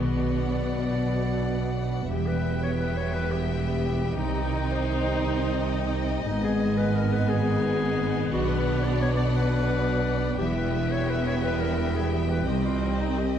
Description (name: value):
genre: cinematic, heroic adventure film score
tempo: 116 BPM (dotted quarters)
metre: 12/8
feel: straight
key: unclear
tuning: A4 = 442 Hz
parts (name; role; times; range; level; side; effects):
- clear symphonic violin section; melody; 0.0-13.4 s; F#5 to G#5; -40 LUFS; left 6 dB; none
- mellow clarinet; second line; 0.0-13.4 s; Eb4 to D5; -32 LUFS; left 3 dB; none
- rich studio violin section; second line; 0.0-13.4 s; D5 to E5; -37 LUFS; left 4 dB; none
- clear symphonic viola section; accompaniment; 0.0-13.4 s; B3 to Eb4; -34 LUFS; equal; none
- clear trombone section; sustained chords; 0.0-13.4 s; Eb3 to E4; -32 LUFS; right 2 dB; none
- concert harp; arpeggios; 0.0-13.4 s; G#2 to E5; -34 LUFS; left 8 dB; none
- rich symphonic cello section; bass; 0.0-13.4 s; C2 to C3; -29 LUFS; right 2 dB; none
- rich symphonic double bass section; bass; 0.0-13.4 s; E1 to C2; -29 LUFS; right 2 dB; none
room: wet concert hall reverb, RT60 1.9 s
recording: dark, warm production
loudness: -23 LUFS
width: side -9 dB against mid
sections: 0.0-13.4 A section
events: none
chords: 0.0 Bm; 2.1 Em; 4.2 Cm; 6.3 G#m; 8.3 Bm; 10.4 Em; 12.5 Cm